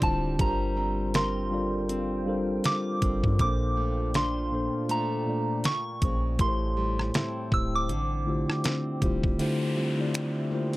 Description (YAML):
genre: contemporary R&B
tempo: 80 BPM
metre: 4/4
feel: swing 58% on 16ths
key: D minor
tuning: A4 = 439 Hz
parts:
  - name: soft synth bell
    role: melody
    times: 0.0-9.0 s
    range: A5 to E6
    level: -32 LUFS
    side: right 1 dB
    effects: chorus
  - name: mellow tine electric piano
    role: accompaniment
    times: 0.0-10.8 s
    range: A2 to D5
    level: -29 LUFS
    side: left 1 dB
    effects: slow stereo tremolo
  - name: deep dark ambient pad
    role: sustained chords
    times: 0.0-10.8 s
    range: F3 to C6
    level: -42 LUFS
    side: equal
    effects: chorus, built-in reverb
  - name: nylon-string guitar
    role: arpeggios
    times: 0.0-10.8 s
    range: A2 to Bb4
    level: -35 LUFS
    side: right 1 dB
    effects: none
  - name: soft 808-style bass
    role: bass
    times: 0.0-9.4 s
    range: D1 to G2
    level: -31 LUFS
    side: equal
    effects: none
  - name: detuned 8-bit digital drum machine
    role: drums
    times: 0.0-10.3 s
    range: finger snaps, hi-hat, kick drum, rim click, snare drum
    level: -28 LUFS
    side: equal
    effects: none
  - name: downlifter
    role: sound effects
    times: 9.4-10.8 s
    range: none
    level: -39 LUFS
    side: left 1 dB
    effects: none
room: little or no reverb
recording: dry, gritty hardware recording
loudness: -25 LUFS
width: side -19 dB against mid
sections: 0.0-9.4 A section; 9.4-10.8 B section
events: kick muted 9.4-10.8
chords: 0.4 Gm11; 3.4 Bbmaj7; 5.6 Bbm7; 6.4 Am7; 7.9 Dm11